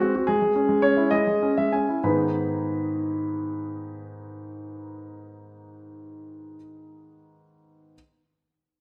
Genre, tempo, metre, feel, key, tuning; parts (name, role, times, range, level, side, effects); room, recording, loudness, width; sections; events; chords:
classical-period piano sonatina; 64-77 BPM (dotted quarters); 6/8; rubato; G# minor; A4 = 440 Hz
clear concert grand piano; solo; 0.0-8.0 s; G#2 to B5; -26 LUFS; equal
moderate recital hall reverb, RT60 1.6 s; -24 LUFS; mono
0.0-2.0 A section; 2.0-5.7 B section
slowing down 0.0-2.0
0.3 C#m/G#; 2.0 G#m